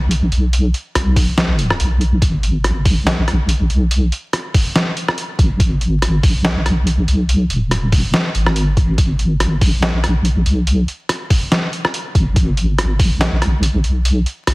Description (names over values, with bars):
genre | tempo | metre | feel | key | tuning
deep dubstep | 142 BPM | 4/4 | swing 55% on 16ths, half-time | G# minor | A4 = 440 Hz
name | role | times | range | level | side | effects
deep soft wobble bass | bass | 0.0-14.5 s | D#1 to B1 | -15 LUFS | equal | chorus
trip hop sampler-style drum kit | drums | 0.1-14.5 s | hi-hat, rim click, snare drum | -19 LUFS | equal | none
electronic kick drum | drums | 1.2-13.1 s | none | -15 LUFS | equal | none
room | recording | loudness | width
little or no reverb | heavily compressed radio sound, vinyl crackle | -14 LUFS | side -24 dB against mid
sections
0.0-14.5 A section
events
kick drops out 1.8-2.2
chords
none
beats
0.11 | 0.53 0.95 1.38 1.80 | 2.22 2.64 3.07 3.49 | 3.91 4.33 4.76 5.18 | 5.60 6.02 6.45 6.87 | 7.29 7.71 8.14 8.56 | 8.98 9.40 9.83 10.25 | 10.67 11.09 11.52 11.94 | 12.36 12.78 13.21 13.63 | 14.05 14.47